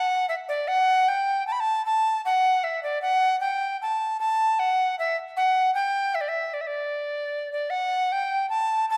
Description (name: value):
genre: medieval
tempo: 153 BPM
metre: 3/4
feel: straight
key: unclear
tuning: A4 = 440 Hz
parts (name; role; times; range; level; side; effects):
- bright tenor recorder; solo; 0.0-9.0 s; D5 to B5; -25 LUFS; equal; none
room: wet recital hall reverb, RT60 1.4 s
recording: none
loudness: -25 LUFS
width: mono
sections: 0.0-7.7 A section; 7.7-9.0 A section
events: none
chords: none